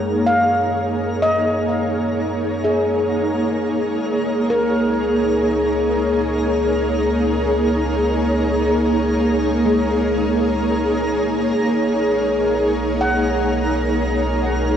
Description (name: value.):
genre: ambient.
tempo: 64 BPM.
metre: 4/4.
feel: straight.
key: unclear.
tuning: A4 = 444 Hz.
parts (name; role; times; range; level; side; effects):
ethereal airy pad; sustained chords; 0.0-14.8 s; A#3 to C#5; -18 LUFS; equal; ensemble chorus, built-in reverb, tremolo, shimmer reverb.
handpan; arpeggios; 0.0-14.8 s; G#3 to F#5; -23 LUFS; equal; diffuse ambient delay, shimmer reverb.
warm sub bass; bass; 0.0-14.8 s; B1 to F#2; -28 LUFS; equal; none.
twinkling granular texture; texture; 0.0-14.8 s; A#4 to A#5; -29 LUFS; equal; built-in reverb, shimmer reverb.
room: wet lush hall reverb, RT60 2.9 s.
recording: worn, warbling old tape, cassette tape, warbly pitch drift.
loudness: -16 LUFS.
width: side -8 dB against mid.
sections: 0.0-14.8 A section.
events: fade-in on sub bass 0.0-14.8; fade-in on synth texture 0.0-14.8.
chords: 0.0 F#6; 4.0 C#5; 11.6 Bmaj7.